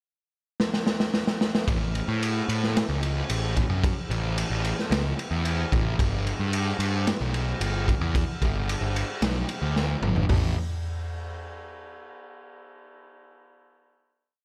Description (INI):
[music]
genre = quiet-loud alternative rock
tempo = 111 BPM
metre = 4/4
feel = straight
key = A mixolydian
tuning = A4 = 442 Hz
[part]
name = raw garage drum kit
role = drums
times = 0.6-10.4 s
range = hi-hat, kick drum, ride cymbal, snare drum, toms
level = -29 LUFS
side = equal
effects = none
[part]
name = fuzz picked electric bass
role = bass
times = 1.7-10.5 s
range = G1 to A2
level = -29 LUFS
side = equal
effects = overdrive
[sound]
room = light reverb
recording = none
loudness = -26 LUFS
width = mono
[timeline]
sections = 0.0-1.7 pickup bar; 1.7-10.3 verse; 10.3-12.5 final note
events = drum fill 0.6-1.7, 9.8-10.3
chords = none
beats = 0.05 0.59 1.13 | 1.68 2.22 2.76 3.30 | 3.84 4.38 4.91 5.45 | 5.99 6.53 7.06 7.60 | 8.14 8.68 9.21 9.75 | 10.29